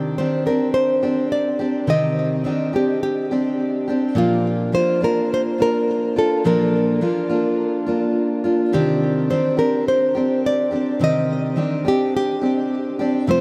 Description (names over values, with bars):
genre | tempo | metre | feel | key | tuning
pop | 105 BPM | 4/4 | straight | C minor | A4 = 440 Hz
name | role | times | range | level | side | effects
nylon-string guitar | melody | 0.0-13.4 s | F4 to Eb5 | -24 LUFS | equal | delay
picked steel-string acoustic guitar | accompaniment | 0.0-13.4 s | F2 to G4 | -22 LUFS | equal | none
room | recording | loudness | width
wet huge ambient reverb, RT60 7.6 s | dreamy mix soaked in reverb | -20 LUFS | mono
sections
0.0-13.4 A section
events
none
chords
0.0 Cmadd9; 4.2 Bb; 8.7 Cmadd9